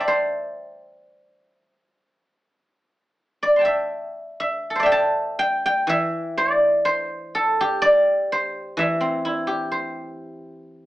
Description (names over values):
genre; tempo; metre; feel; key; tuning
chinese traditional, Chinese solo plucked strings; 58-67 BPM; 4/4; rubato; C gong mode; A4 = 440 Hz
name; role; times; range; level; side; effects
guzheng; solo; 0.0-10.9 s; E3 to C6; -19 LUFS; equal; none
room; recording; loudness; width
moderate studio reverb, RT60 0.6 s; AM radio sound; -19 LUFS; side -16 dB against mid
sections
0.0-3.9 A section; 3.9-10.9 B section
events
none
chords
none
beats
| 0.01 0.95 1.91 2.91 | 3.92 4.92 5.89 6.85 | 7.82 8.77 9.69 10.60